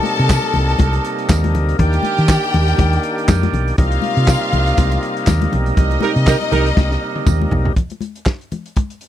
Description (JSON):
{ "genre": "disco", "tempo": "120 BPM", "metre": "4/4", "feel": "swing 56% on 16ths", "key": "C dorian", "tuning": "A4 = 441 Hz", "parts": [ { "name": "clear studio string section", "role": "second line", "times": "0.0-7.5 s", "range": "Eb4 to A5", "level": "-22 LUFS", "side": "left 2 dB", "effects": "none" }, { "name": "overdriven tonewheel organ", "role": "sustained chords", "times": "0.0-7.7 s", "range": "C3 to G4", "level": "-21 LUFS", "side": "equal", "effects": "slow rotary speaker" }, { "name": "congas", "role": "percussion", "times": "0.0-8.9 s", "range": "none", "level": "-24 LUFS", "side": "left 6 dB", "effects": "none" }, { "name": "warm soul drum kit", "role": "drums", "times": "0.1-9.1 s", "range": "handclaps, hi-hat, kick drum, snare drum, toms", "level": "-16 LUFS", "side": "equal", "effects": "none" }, { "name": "hollow-body short-scale fingered electric bass", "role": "bass", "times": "0.2-7.7 s", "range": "B1 to Eb3", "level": "-16 LUFS", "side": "equal", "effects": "none" }, { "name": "tambourine", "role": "percussion", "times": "0.3-7.4 s", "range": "none", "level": "-31 LUFS", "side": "right 15 dB", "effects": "none" }, { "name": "warm horn section", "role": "stabs", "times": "6.0-6.7 s", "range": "Eb4 to Bb4", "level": "-17 LUFS", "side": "right 8 dB", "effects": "none" } ], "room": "little or no reverb", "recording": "none", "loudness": "-14 LUFS", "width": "side -12 dB against mid", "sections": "0.0-7.8 A section; 7.8-9.1 B section", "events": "band accent 5.8-7.8; drum fill 6.8-7.8", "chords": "0.0 Cm7; 1.8 Ebmaj7; 3.8 Cm7; 7.8 N.C." }